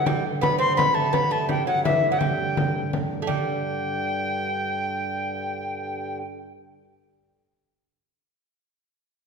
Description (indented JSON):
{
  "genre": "medieval dance",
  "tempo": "168 BPM",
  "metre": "3/4",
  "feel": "straight",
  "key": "G major",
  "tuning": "A4 = 436 Hz",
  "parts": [
    { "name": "mellow alto recorder", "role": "melody", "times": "0.0-6.2 s", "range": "E5 to C6", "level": "-25 LUFS", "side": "left 2 dB", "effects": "none" },
    { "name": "lute", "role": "second line", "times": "0.0-6.8 s", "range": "E3 to C4", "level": "-29 LUFS", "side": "right 6 dB", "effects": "none" },
    { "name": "pedal harmonium", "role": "drone", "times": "0.0-6.2 s", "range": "G2 to D3", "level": "-33 LUFS", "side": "left 1 dB", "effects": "none" },
    { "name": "frame drum", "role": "percussion", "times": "0.1-3.5 s", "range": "none", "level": "-26 LUFS", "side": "equal", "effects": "none" }
  ],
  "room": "wet recital hall reverb, RT60 1.6 s",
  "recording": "recorded in a church or concert hall",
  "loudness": "-22 LUFS",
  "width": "side -5 dB against mid",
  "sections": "0.0-3.3 A section; 3.3-5.4 B section",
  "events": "none",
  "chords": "none"
}